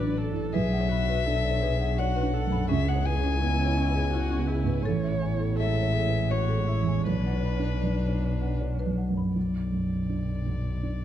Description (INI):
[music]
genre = neoclassical piano and strings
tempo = 82 BPM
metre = 3/4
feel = rubato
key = B dorian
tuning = A4 = 440 Hz
[part]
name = rich violin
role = melody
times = 0.0-11.0 s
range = B4 to G#5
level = -32 LUFS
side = left 6 dB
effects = none
[part]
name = felt-muted upright piano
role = accompaniment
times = 0.0-11.0 s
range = A1 to D5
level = -29 LUFS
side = right 3 dB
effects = none
[part]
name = warm viola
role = accompaniment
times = 0.0-8.9 s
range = D4 to C#5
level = -37 LUFS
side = right 2 dB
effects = none
[part]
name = soft additive organ-like pad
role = sustained chords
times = 0.0-9.4 s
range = F#3 to D5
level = -39 LUFS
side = equal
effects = none
[part]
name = buzzing marimba with medium mallets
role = arpeggios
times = 0.0-9.3 s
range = C#4 to B5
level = -36 LUFS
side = left 3 dB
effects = tape echo
[part]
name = rich double bass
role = bass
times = 0.0-11.0 s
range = A1 to C#2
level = -28 LUFS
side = left 1 dB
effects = none
[sound]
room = light reverb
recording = dark, warm production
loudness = -24 LUFS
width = side -11 dB against mid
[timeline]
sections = 0.0-9.4 A section; 9.4-11.0 B section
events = none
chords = 0.0 D/A; 0.5 Bmadd9; 2.7 C#m7; 4.8 Amaj7; 7.1 Bmadd9; 9.4 Bm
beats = | 0.55 1.27 1.98 | 2.70 3.41 4.12 | 4.84 5.57 6.30 | 7.06 7.83 8.60 | 9.36 10.10 10.83